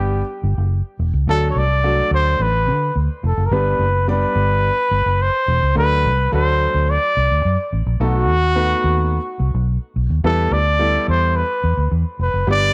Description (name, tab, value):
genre	uptempo 1960s-style soul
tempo	107 BPM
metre	4/4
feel	straight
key	D mixolydian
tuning	A4 = 440 Hz
part	breathy trumpet	melody	0.0-12.7 s	F#4 to D5	-21 LUFS	equal	none
part	clear grand piano	accompaniment	0.0-12.7 s	F#3 to D5	-27 LUFS	equal	none
part	vintage muted fingered electric bass	bass	0.0-12.7 s	E1 to D3	-20 LUFS	equal	none
room	light reverb, studio ambience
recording	none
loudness	-18 LUFS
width	mono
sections	0.0-12.7 A section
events	none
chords	0.0 G; 1.3 D; 3.5 G; 5.8 D; 8.0 B7; 10.2 Em